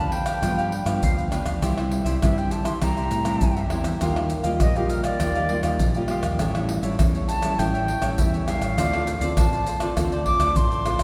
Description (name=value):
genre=samba and choro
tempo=101 BPM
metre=4/4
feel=straight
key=unclear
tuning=A4 = 441 Hz
part: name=silver concert flute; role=melody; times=0.0-11.0 s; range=G4 to D6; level=-30 LUFS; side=equal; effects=none
part: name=cavaquinho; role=accompaniment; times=0.0-11.0 s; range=D4 to F5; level=-33 LUFS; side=equal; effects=none
part: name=nylon-string guitar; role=accompaniment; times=0.0-11.0 s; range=G2 to F4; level=-31 LUFS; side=equal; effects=none
part: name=mellow fretless electric bass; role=bass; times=0.0-11.0 s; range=A1 to A2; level=-30 LUFS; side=equal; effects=none
part: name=pandeiro, tube shaker, tamborim and surdo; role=percussion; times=0.1-11.0 s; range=none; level=-27 LUFS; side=equal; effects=none
room=wet church reverb, RT60 3.4 s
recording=recorded in a church or concert hall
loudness=-23 LUFS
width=mono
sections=0.0-11.0 A section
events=flute solo 0.0-11.0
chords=0.0 G7; 1.6 C; 4.0 Ebadd9; 6.4 A7; 8.8 Dm7